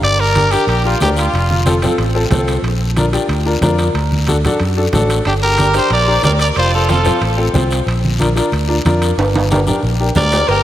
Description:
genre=latin, cumbia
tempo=184 BPM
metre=4/4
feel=straight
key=G minor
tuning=A4 = 439 Hz
part: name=growling trumpet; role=melody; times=0.0-1.8, 5.3-7.2, 10.2-10.6 s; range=F4 to D5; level=-16 LUFS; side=equal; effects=diffuse ambient delay
part: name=bright upright piano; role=accompaniment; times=0.0-10.5 s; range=C4 to G5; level=-18 LUFS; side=left 2 dB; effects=none
part: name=fingered electric bass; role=bass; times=0.0-10.6 s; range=F1 to F#2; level=-16 LUFS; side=equal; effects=none
part: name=guiro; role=percussion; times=0.0-10.6 s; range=none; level=-27 LUFS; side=left 4 dB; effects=none
part: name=timbales and cowbell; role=percussion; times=0.0-10.6 s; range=none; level=-24 LUFS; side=right 2 dB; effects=none
part: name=congas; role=percussion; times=0.4-10.3 s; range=none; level=-20 LUFS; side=right 1 dB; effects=none
part: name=clean electric guitar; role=second line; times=5.3-7.2, 10.2-10.6 s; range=D4 to Bb4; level=-22 LUFS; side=right 2 dB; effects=wide subtle chorus
room=moderate lush hall reverb, RT60 2.6 s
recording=dreamy mix soaked in reverb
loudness=-12 LUFS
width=side -12 dB against mid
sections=0.0-10.5 A section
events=drum fill 9.2-10.5; upright piano fill 9.8-10.5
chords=0.0 Gm; 1.3 F; 2.6 Bb; 4.0 D; 5.3 Gm; 6.6 F; 7.9 Bb; 9.2 Gm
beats=| 0.03 0.36 0.69 1.01 | 1.34 1.67 1.99 2.32 | 2.65 2.97 3.30 3.62 | 3.95 4.28 4.61 4.93 | 5.26 5.59 5.91 6.24 | 6.57 6.89 7.22 7.55 | 7.87 8.20 8.53 8.85 | 9.18 9.51 9.83 10.16 | 10.49

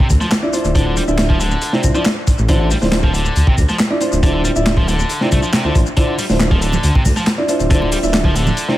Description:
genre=breakbeat, breaks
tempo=138 BPM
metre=4/4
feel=straight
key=D minor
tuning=A4 = 440 Hz
part: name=tight distorted guitar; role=riff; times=0.0-8.8 s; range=C3 to A3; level=-22 LUFS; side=equal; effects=distortion, vintage 12-bit sampler grit, dub echo
part: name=crunchy breakbeat drum kit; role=drums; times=0.0-8.8 s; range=hi-hat, kick drum, snare drum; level=-16 LUFS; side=equal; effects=none
part: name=impact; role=sound effects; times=0.4-0.8 s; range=none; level=-40 LUFS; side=right 1 dB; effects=none
part: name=dark detuned saw bass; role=bass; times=0.1-8.5 s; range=D1 to D2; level=-18 LUFS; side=equal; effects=none
part: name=garage drum kit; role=drums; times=0.1-8.7 s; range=handclaps, ride cymbal, shaker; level=-26 LUFS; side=left 1 dB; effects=dub echo
part: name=dark baby grand piano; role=stabs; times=0.4-8.8 s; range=D4 to E5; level=-20 LUFS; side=equal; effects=dub echo
part: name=congas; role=percussion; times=6.7-8.6 s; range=none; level=-24 LUFS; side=right 3 dB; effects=dub echo
room=light reverb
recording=echo-heavy mix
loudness=-13 LUFS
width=side -15 dB against mid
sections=0.0-8.8 A section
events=impact 0.0-0.8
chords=0.0 Dm9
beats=0.32 | 0.75 1.19 1.62 2.06 | 2.49 2.92 3.36 3.79 | 4.23 4.66 5.10 5.53 | 5.97 6.40 6.84 7.27 | 7.71 8.14 8.58

